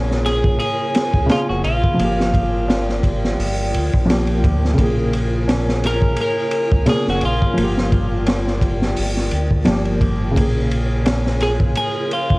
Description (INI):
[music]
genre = trip hop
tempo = 86 BPM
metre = 4/4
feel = swing 55% on 16ths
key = unclear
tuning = A4 = 439 Hz
[part]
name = felt-muted upright piano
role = accompaniment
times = 0.0-12.4 s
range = Db3 to Ab4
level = -23 LUFS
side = equal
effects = tremolo, tape echo
[part]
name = warbly tape-like pad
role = sustained chords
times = 0.0-12.4 s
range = F4 to Ab5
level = -27 LUFS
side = equal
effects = chorus, built-in reverb
[part]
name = deep dub fingered electric bass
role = bass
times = 0.0-12.4 s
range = F1 to D2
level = -21 LUFS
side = equal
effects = transformer saturation
[part]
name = crunchy breakbeat drum kit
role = drums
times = 0.1-12.4 s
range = hi-hat, kick drum, ride cymbal, snare drum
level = -20 LUFS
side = equal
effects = none
[part]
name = twelve-string electric guitar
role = melody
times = 0.3-12.4 s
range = F4 to Bb4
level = -22 LUFS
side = equal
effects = tape echo
[part]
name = tabla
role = percussion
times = 1.3-11.2 s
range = none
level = -33 LUFS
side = equal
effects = none
[sound]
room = light reverb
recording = worn, warbling old tape, cassette tape, vinyl crackle, warbly pitch drift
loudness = -16 LUFS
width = side -22 dB against mid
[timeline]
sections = 0.0-12.4 A section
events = none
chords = 0.0 Bbm7; 2.0 Gm7; 4.8 Bbm7; 7.6 Gm7; 10.4 Bbm7